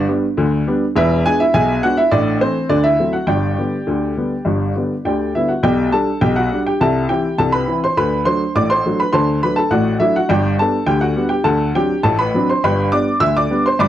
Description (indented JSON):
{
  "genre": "ragtime piano",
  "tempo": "103 BPM",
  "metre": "2/4",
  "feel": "straight",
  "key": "G major",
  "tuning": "A4 = 442 Hz",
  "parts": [
    { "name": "warm upright piano", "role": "solo", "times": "0.0-13.9 s", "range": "E1 to E6", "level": "-14 LUFS", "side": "equal", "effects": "none" }
  ],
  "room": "moderate small room reverb, RT60 0.5 s",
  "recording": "dark, warm production",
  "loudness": "-14 LUFS",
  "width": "side -12 dB against mid",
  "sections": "0.0-5.6 A section; 5.6-13.9 B section",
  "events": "none",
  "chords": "0.0 G; 1.0 E7; 2.1 Am; 2.7 D7; 3.3 G; 5.6 G/B; 6.8 Am/C; 8.0 D7; 10.3 G; 11.5 D7; 12.6 G",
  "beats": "0.37 | 0.95 1.53 | 2.12 2.70 | 3.29 3.88 | 4.47 5.06 | 5.65 6.23 | 6.81 7.39 | 7.98 8.56 | 9.14 9.72 | 10.30 10.88 | 11.46 12.04 | 12.62 13.20 | 13.78"
}